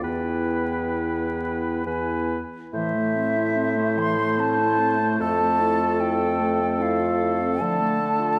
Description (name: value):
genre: classical, slow romantic movement for wind quintet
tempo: 64-76 BPM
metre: 3/4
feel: rubato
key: A minor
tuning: A4 = 441 Hz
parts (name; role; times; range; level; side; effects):
- silver concert flute; melody; 0.0-8.4 s; E5 to C6; -28 LUFS; equal; none
- warm oboe; second line; 0.0-8.4 s; A4 to C5; -32 LUFS; equal; none
- warm French horn; accompaniment; 0.0-8.4 s; A3 to B3; -32 LUFS; equal; none
- warm clarinet; accompaniment; 0.0-8.4 s; E3 to F4; -32 LUFS; equal; none
- mellow bassoon; bass; 0.0-8.4 s; E2 to D3; -28 LUFS; equal; none
room: wet scoring stage reverb, RT60 2.0 s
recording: vinyl crackle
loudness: -23 LUFS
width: mono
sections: 0.0-2.7 A section; 2.7-8.4 B section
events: none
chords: 0.0 E5; 2.7 Am; 5.2 Fmaj7; 7.6 Dm